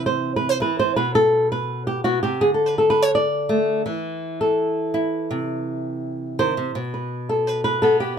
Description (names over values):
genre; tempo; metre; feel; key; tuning
flamenco; 166 BPM; 4/4; straight; unclear; A4 = 437 Hz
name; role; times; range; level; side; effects
flamenco guitar; solo; 0.0-8.2 s; B2 to D5; -19 LUFS; equal; none
room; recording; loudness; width
light reverb; close, detailed microphones; -19 LUFS; side -7 dB against mid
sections
0.0-8.2 A section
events
none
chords
0.0 C; 1.0 Am13/B; 2.4 D5; 3.9 N.C.; 5.3 C; 6.8 N.C.